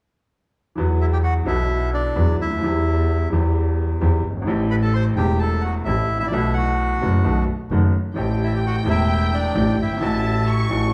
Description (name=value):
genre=tango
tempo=130 BPM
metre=4/4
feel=rubato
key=E minor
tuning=A4 = 438 Hz
part: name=clear upright piano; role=accompaniment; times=0.8-10.9 s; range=E1 to G4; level=-25 LUFS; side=equal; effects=none
part: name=clear double bass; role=bass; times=0.8-10.9 s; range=E1 to E2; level=-23 LUFS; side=equal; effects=none
part: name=bandoneon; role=melody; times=1.0-10.7 s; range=D4 to C6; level=-28 LUFS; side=equal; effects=none
part: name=warm studio violin section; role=second line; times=8.2-10.9 s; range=G5 to C#6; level=-31 LUFS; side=equal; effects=none
room=wet large studio reverb, RT60 1.1 s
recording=heard from further back in the room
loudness=-20 LUFS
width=mono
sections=0.8-10.9 A section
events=none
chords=0.8 Esus2; 2.6 C/E; 4.5 Am7; 6.3 B7sus4; 7.2 B7; 8.2 Am7; 10.0 F#m7/A